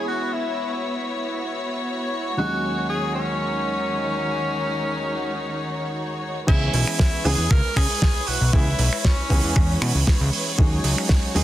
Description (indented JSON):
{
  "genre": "nu-disco, nu disco",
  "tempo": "117 BPM",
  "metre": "4/4",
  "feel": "straight",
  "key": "C# minor",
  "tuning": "A4 = 440 Hz",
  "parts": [
    { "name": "warm tenor saxophone", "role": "melody", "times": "0.0-9.8 s", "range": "C#4 to A#4", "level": "-27 LUFS", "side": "left 1 dB", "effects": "analog delay" },
    { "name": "dark baby grand piano", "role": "accompaniment", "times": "0.0-11.4 s", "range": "D#2 to G#4", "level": "-29 LUFS", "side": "equal", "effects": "sidechain pumping" },
    { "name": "rich studio string section", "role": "sustained chords", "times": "0.0-11.4 s", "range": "D#3 to C#5", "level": "-28 LUFS", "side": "equal", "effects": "sidechain pumping" },
    { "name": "fat analog bass", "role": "bass", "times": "6.5-11.4 s", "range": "B1 to C#3", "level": "-22 LUFS", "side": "equal", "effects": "tube saturation" },
    { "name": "damped 70s drum kit", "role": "drums", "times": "6.5-11.4 s", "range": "crash cymbal, finger snaps, hi-hat, snare drum", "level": "-25 LUFS", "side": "right 3 dB", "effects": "none" },
    { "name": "electronic kick drum", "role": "drums", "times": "6.5-11.2 s", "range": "none", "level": "-19 LUFS", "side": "equal", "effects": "none" }
  ],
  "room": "light reverb, studio reverb",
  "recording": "dense, heavily limited modern master",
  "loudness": "-20 LUFS",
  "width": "side -13 dB against mid",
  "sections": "0.0-6.5 A section; 6.5-11.4 B section",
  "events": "drop 6.5-11.4",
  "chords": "0.0 C#m7; 2.4 G#7sus4/D#; 6.5 C#m7; 10.6 G#7sus4"
}